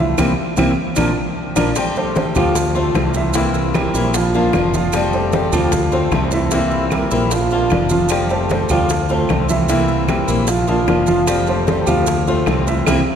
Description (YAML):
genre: latin, Cuban son and guajira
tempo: 151 BPM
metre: 4/4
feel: straight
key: F major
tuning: A4 = 443 Hz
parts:
  - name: picked acoustic archtop guitar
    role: accompaniment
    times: 0.0-13.0 s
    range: C3 to G4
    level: -21 LUFS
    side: left 4 dB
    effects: none
  - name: dark baby grand piano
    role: arpeggios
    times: 0.0-13.0 s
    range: E3 to F5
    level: -19 LUFS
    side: right 3 dB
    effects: none
  - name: fretless electric bass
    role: bass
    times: 0.0-13.0 s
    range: F1 to D2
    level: -21 LUFS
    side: equal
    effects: none
  - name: congas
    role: percussion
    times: 0.0-13.0 s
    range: none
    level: -24 LUFS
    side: equal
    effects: none
  - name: bongos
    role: percussion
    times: 0.2-13.0 s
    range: none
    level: -27 LUFS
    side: left 5 dB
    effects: none
  - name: claves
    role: percussion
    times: 0.2-13.0 s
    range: none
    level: -31 LUFS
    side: right 6 dB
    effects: none
  - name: maracas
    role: percussion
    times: 0.2-13.0 s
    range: none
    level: -30 LUFS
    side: right 6 dB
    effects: none
room: wet cathedral reverb, RT60 4.8 s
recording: recorded in a church or concert hall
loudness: -14 LUFS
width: side -8 dB against mid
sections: 0.0-1.8 A section; 1.8-13.2 B section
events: band accent 0.2-1.8, 12.9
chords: 0.2 C7; 1.0 Bb; 1.8 Fadd9; 2.6 Dm7; 3.4 C7; 4.1 Bb; 4.9 Fadd9; 5.7 Dm7; 6.5 C7; 7.3 Bb; 8.1 Fadd9; 8.9 Dm7; 9.7 C7; 10.5 Bb; 11.3 Fadd9; 12.1 Dm7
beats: | 0.19 0.58 0.98 1.38 | 1.77 2.17 2.56 2.96 | 3.35 3.75 4.15 4.54 | 4.94 5.33 5.73 6.12 | 6.52 6.92 7.31 7.71 | 8.11 8.50 8.90 9.30 | 9.69 10.09 10.49 10.88 | 11.28 11.68 12.07 12.47 | 12.87